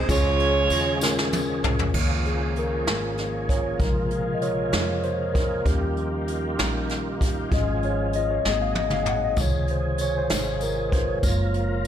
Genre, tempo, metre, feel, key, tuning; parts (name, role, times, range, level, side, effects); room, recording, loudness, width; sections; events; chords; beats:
slow gospel; 65 BPM (dotted quarters); 6/8; straight; Db major; A4 = 441 Hz
mellow saxophone section; melody; 0.0-1.3 s; F4 to Db5; -24 LUFS; right 5 dB
mellow tine electric piano; accompaniment; 0.0-11.9 s; Ab2 to Gb5; -26 LUFS; left 2 dB
overdriven tonewheel organ; sustained chords; 0.0-11.9 s; Eb3 to Bb4; -32 LUFS; right 2 dB; fast rotary speaker, chorus vibrato
upright bass; bass; 0.0-11.9 s; Gb1 to F2; -28 LUFS; equal
vintage brush drum kit; drums; 0.1-11.9 s; crash cymbal, hi-hat, kick drum, ride cymbal, snare drum, toms; -26 LUFS; equal
tambourine; percussion; 0.1-1.6, 9.4-11.9 s; -36 LUFS; left 5 dB
mellow French horn section; sustained chords; 1.9-11.9 s; F3 to Gb4; -38 LUFS; right 3 dB
light reverb, small room ambience; -21 LUFS; side -10 dB against mid
0.0-1.9 A section; 1.9-11.9 B section
drum fill 1.0-1.9, 8.4-9.4; tine electric piano solo 1.9-11.9
0.1 Db; 1.9 Db6; 3.8 Bbm7; 5.7 Eb7; 7.5 Db/Ab; 8.4 Ab7; 9.4 Dbmaj7; 11.2 Gbmaj7
| 0.09 1.02 | 1.94 2.87 | 3.80 4.73 | 5.66 6.59 | 7.52 8.45 | 9.38 10.30 | 11.23